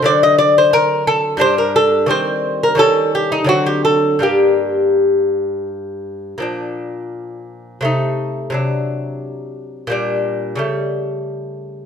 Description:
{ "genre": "classical, baroque-style dance for lute", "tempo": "87 BPM", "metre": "3/4", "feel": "rubato", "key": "G minor", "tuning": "A4 = 443 Hz", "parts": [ { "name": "lute", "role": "solo", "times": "0.0-11.9 s", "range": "G2 to Eb5", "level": "-15 LUFS", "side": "left 1 dB", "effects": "none" } ], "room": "wet stone room reverb, RT60 1.3 s", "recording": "band playing live in one room", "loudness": "-14 LUFS", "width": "side -7 dB against mid", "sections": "0.0-6.4 A section; 6.4-11.9 A section", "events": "none", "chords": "0.1 D7; 1.4 G5; 2.1 Cm/Eb; 2.8 Eb7; 3.5 D7; 4.2 Gm; 6.4 Bb; 7.8 Adim/C; 8.5 D7/C; 9.9 Gm/Bb; 10.6 A7/C#" }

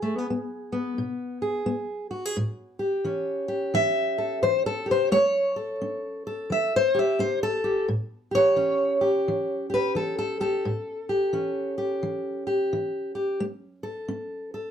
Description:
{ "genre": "blues", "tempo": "87 BPM", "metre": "4/4", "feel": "swing 63% on 8ths", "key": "A mixolydian", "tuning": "A4 = 440 Hz", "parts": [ { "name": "fingerpicked steel-string acoustic guitar", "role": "solo", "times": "0.0-14.7 s", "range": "A2 to E5", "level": "-24 LUFS", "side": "equal", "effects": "none" } ], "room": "moderate studio reverb, RT60 0.6 s", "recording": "dark, warm production", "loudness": "-24 LUFS", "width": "side -8 dB against mid", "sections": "0.0-7.9 A section; 7.9-14.7 A section", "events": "steel-string acoustic guitar solo 0.0-7.9, 7.9-14.7", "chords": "0.0 E (rootless); 2.3 A7" }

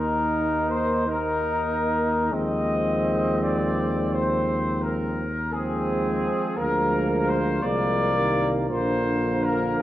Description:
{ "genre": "classical, hymn-like piece for brass band", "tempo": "45-58 BPM (dotted quarters)", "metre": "12/8", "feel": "rubato", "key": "unclear", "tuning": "A4 = 442 Hz", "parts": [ { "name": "dark trumpet section", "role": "melody", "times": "0.0-9.8 s", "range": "Ab4 to Eb5", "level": "-26 LUFS", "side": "left 2 dB", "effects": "none" }, { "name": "clear flugelhorn", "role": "second line", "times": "0.0-9.8 s", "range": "Bb3 to Eb4", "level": "-29 LUFS", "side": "right 3 dB", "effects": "none" }, { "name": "mellow euphonium", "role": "accompaniment", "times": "0.0-9.8 s", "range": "F3 to Bb3", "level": "-30 LUFS", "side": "left 1 dB", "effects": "none" }, { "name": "warm trombone", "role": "accompaniment", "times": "0.0-9.8 s", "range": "D3 to F3", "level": "-32 LUFS", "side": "right 1 dB", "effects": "none" }, { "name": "warm tuba", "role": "bass", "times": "0.0-9.8 s", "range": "Bb1 to Eb2", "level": "-28 LUFS", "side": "equal", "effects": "none" } ], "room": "moderate recital hall reverb, RT60 1.5 s", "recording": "worn, warbling old tape, cassette tape, warbly pitch drift", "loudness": "-22 LUFS", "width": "side -13 dB against mid", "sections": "0.0-9.8 A section", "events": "none", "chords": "0.0 Eb5; 2.3 Fm7/Eb; 6.6 Bb7/D; 8.7 Bb" }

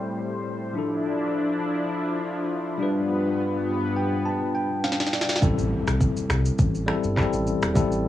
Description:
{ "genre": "afrobeats", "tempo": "103 BPM", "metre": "4/4", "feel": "swing 55% on 16ths", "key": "A minor", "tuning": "A4 = 442 Hz", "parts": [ { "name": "bell-like tine electric piano", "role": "accompaniment", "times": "0.0-8.1 s", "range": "F3 to A5", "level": "-26 LUFS", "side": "left 2 dB", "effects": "medium stereo tremolo, low-pass filter, cassette tape" }, { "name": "lush unison pad", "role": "sustained chords", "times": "0.0-5.4 s", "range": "G2 to C5", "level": "-28 LUFS", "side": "left 1 dB", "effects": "chorus, low-pass filter, cassette tape" }, { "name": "downlifter and impact", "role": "sound effects", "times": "0.0-0.8, 5.4-7.8 s", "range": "none", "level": "-35 LUFS", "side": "equal", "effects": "none" }, { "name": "afro-pop drum kit", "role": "drums", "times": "4.8-8.0 s", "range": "finger snaps, handclaps, kick drum, rim click, shaker, snare drum", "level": "-24 LUFS", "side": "equal", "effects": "cassette tape" }, { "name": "round analog bass", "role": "bass", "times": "5.4-8.1 s", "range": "E1 to C2", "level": "-25 LUFS", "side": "equal", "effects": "none" } ], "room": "light reverb", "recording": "home recording on cassette, small room ambience", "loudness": "-22 LUFS", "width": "side -13 dB against mid", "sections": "0.0-5.4 A section; 5.4-8.1 B section", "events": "tine electric piano fill 3.7-5.4; drum fill 4.8-5.4; impact 5.4-7.8", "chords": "0.0 Am7; 0.8 Dmadd9; 2.8 G7; 5.4 Am7" }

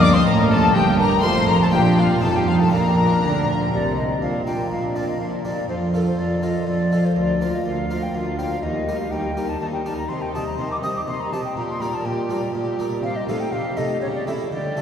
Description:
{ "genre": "classical, baroque-style concerto movement with solo episodes", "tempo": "122 BPM", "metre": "3/4", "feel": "straight", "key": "Bb major", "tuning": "A4 = 440 Hz", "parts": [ { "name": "silver concert flute", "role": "melody", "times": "0.0-14.8 s", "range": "Bb4 to Eb6", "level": "-26 LUFS", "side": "left 2 dB", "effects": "none" }, { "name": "warm chamber violin section", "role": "melody", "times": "0.0-14.8 s", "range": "G4 to D6", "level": "-29 LUFS", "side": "left 4 dB", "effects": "none" }, { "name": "warm studio violin section", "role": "second line", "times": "0.0-14.8 s", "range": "C4 to D5", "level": "-28 LUFS", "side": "left 1 dB", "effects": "none" }, { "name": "dark chamber viola section", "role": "accompaniment", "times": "0.0-14.8 s", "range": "Eb3 to Eb4", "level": "-30 LUFS", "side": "right 1 dB", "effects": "none" }, { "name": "harpsichord", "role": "accompaniment", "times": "0.0-14.8 s", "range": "D2 to Eb5", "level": "-25 LUFS", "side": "equal", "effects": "none" }, { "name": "warm chamber cello section", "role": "bass", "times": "0.0-14.8 s", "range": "D2 to D3", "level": "-23 LUFS", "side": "right 1 dB", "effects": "none" }, { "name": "warm chamber double bass section", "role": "bass", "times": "0.0-4.2 s", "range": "F1 to D2", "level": "-26 LUFS", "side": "right 2 dB", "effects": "none" } ], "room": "wet cathedral reverb, RT60 6.5 s", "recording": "heard from further back in the room", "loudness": "-18 LUFS", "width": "side -8 dB against mid", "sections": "0.0-4.2 A section; 4.2-14.8 B section", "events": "none", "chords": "0.0 Eb/G; 1.2 F; 1.7 Bb; 2.2 F5; 2.7 Bb; 5.7 F; 7.2 Bb/D; 8.6 Eb; 10.1 Cm; 11.6 Gm/Bb; 13.0 Am7b5/C; 14.0 A7/C#" }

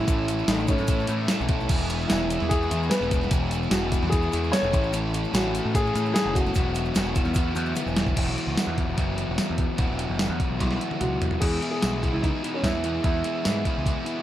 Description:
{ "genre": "indie rock", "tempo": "148 BPM", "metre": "4/4", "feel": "straight", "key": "E major", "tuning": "A4 = 439 Hz", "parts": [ { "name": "dark upright piano", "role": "melody", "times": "0.0-7.7, 11.0-14.2 s", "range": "C#4 to C#5", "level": "-29 LUFS", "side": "equal", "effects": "none" }, { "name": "barky tine electric piano", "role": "second line", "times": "0.0-7.7 s", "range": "A3 to A4", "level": "-38 LUFS", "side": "left 6 dB", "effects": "none" }, { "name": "overdriven semi-hollow guitar", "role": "riff", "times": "0.0-14.2 s", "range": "E3 to A4", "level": "-32 LUFS", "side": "right 8 dB", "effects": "wide subtle chorus, analog delay" }, { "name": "sludgy distorted guitar", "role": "riff", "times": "0.0-14.2 s", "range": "E2 to F#4", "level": "-31 LUFS", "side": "left 8 dB", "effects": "overdrive" }, { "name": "growling picked electric bass", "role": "bass", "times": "0.0-13.9 s", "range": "E1 to A2", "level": "-28 LUFS", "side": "equal", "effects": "overdrive" }, { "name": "clean 12-bit digital drum machine", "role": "drums", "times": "0.1-14.2 s", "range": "crash cymbal, hi-hat, kick drum, snare drum, tambourine, toms", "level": "-26 LUFS", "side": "equal", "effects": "none" }, { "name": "tube shaker", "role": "percussion", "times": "0.1-8.1 s", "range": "none", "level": "-45 LUFS", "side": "left 13 dB", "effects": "none" } ], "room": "digital ambience", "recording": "dark, warm production", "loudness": "-22 LUFS", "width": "side -12 dB against mid", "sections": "0.0-8.2 A section; 8.2-11.4 B section; 11.4-14.2 C section", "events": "drum fill 7.8-8.2, 10.6-11.4", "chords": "0.0 A; 1.7 E; 4.7 Amaj7; 6.5 Esus2; 11.4 E" }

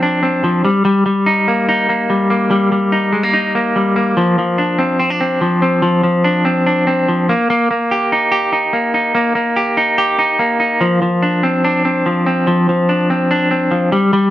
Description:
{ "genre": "indie pop", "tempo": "145 BPM", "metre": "4/4", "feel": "straight", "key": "unclear", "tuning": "A4 = 441 Hz", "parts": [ { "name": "semi-hollow electric guitar", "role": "solo", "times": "0.0-14.3 s", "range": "F3 to G4", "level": "-12 LUFS", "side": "equal", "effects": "tremolo" } ], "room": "moderate studio reverb, RT60 0.6 s", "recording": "band playing live in one room", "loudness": "-12 LUFS", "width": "side -13 dB against mid", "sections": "0.0-10.8 A section; 10.8-14.3 A section", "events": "none", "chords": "0.0 Dm7/F; 0.6 Eb; 4.2 Dm7/F; 7.3 Eb; 10.8 Dm7/F" }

